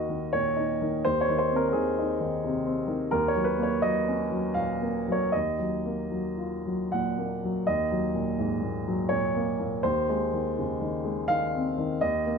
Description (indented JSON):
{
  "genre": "neoclassical minimalist piano",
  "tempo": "75-88 BPM",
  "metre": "3/4",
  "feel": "rubato",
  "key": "Eb minor",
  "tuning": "A4 = 440 Hz",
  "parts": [
    { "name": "warm baby grand piano", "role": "solo", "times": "0.0-12.4 s", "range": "Eb2 to Gb5", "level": "-25 LUFS", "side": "equal", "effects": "none" }
  ],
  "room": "moderate stone room reverb, RT60 1.3 s",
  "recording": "none",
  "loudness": "-25 LUFS",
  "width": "side -5 dB against mid",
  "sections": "0.0-7.7 A section; 7.7-12.4 B section",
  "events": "none",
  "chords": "0.0 Ebm; 1.1 Ab/Eb; 3.1 Gb/Eb; 5.3 Ebmadd9; 7.7 Ebm; 9.8 Ab/Eb"
}